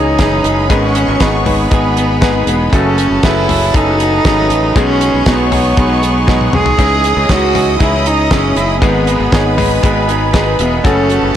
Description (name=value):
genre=piano-driven pop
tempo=118 BPM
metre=4/4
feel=straight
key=C# minor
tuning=A4 = 440 Hz
part: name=warm cello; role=melody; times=0.0-11.4 s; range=B3 to G#4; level=-15 LUFS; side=right 1 dB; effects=none
part: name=warm studio violin section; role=second line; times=0.0-11.4 s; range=G#4 to D#6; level=-21 LUFS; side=equal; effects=ping-pong delay
part: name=bright concert grand piano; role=accompaniment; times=0.0-11.4 s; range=G#2 to C#5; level=-18 LUFS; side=left 5 dB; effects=none
part: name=warm analog pad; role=sustained chords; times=0.0-11.4 s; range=B4 to D#6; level=-26 LUFS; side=left 1 dB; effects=none
part: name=direct-recorded clean electric guitar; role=riff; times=0.0-11.4 s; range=F#2 to G#4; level=-20 LUFS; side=right 7 dB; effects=none
part: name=modern bright fingered electric bass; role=bass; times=0.0-11.3 s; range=E1 to C#2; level=-17 LUFS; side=equal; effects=none
part: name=damped 70s drum kit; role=drums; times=0.2-11.2 s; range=hi-hat, kick drum, snare drum, toms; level=-15 LUFS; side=equal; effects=none
room=light reverb, studio ambience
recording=blown-out, overdriven recording, overdrive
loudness=-10 LUFS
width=side -10 dB against mid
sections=0.0-11.4 A section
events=drum fill 6.3-6.8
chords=0.0 C#madd9; 0.7 G#m; 2.7 F#madd9; 4.8 B6; 6.8 C#madd9; 8.8 G#m; 10.8 F#madd9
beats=0.19 | 0.70 1.21 1.72 2.22 | 2.73 3.24 3.75 4.25 | 4.76 5.27 5.78 6.28 | 6.79 7.30 7.80 8.31 | 8.82 9.33 9.83 10.34 | 10.85 11.35